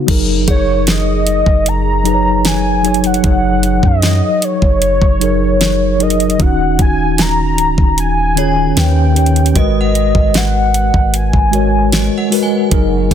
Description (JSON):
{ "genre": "contemporary R&B", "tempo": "76 BPM", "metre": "4/4", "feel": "straight", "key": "unclear", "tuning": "A4 = 440 Hz", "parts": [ { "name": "mellow tine electric piano", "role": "accompaniment", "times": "0.0-13.1 s", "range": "Eb3 to Db5", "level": "-16 LUFS", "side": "left 1 dB", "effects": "medium stereo tremolo" }, { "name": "hollow soft pad", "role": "sustained chords", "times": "0.0, 12.7-13.1 s", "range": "Eb3 to Gb4", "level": "-34 LUFS", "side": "left 1 dB", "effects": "none" }, { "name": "soft 808-style bass", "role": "bass", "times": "0.1-13.1 s", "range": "Db1 to Gb2", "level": "-16 LUFS", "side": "equal", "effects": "none" }, { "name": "smooth R&B drum kit", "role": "drums", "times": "0.1-13.1 s", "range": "crash cymbal, hi-hat, kick drum, snare drum", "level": "-15 LUFS", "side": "equal", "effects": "none" }, { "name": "warm velvety synth lead", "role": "melody", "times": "0.5-12.3 s", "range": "Db5 to Bb5", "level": "-17 LUFS", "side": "equal", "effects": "chorus" }, { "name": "synth chime", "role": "texture", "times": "0.5-2.9, 8.4-13.1 s", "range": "Ab4 to Ab5", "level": "-26 LUFS", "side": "right 1 dB", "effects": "ensemble chorus, phaser, tape echo" } ], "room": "digital ambience", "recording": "dense, heavily limited modern master", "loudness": "-10 LUFS", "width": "side -9 dB against mid", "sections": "0.1-13.1 A section", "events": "none", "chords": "0.1 Gb69; 6.4 Ebm9; 8.8 Eb7b13; 9.6 Abm9", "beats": "| 0.09 0.87 1.66 2.45 | 3.24 4.03 4.82 5.61 | 6.40 7.19 7.98 8.77 | 9.56 10.35 11.14 11.93 | 12.72" }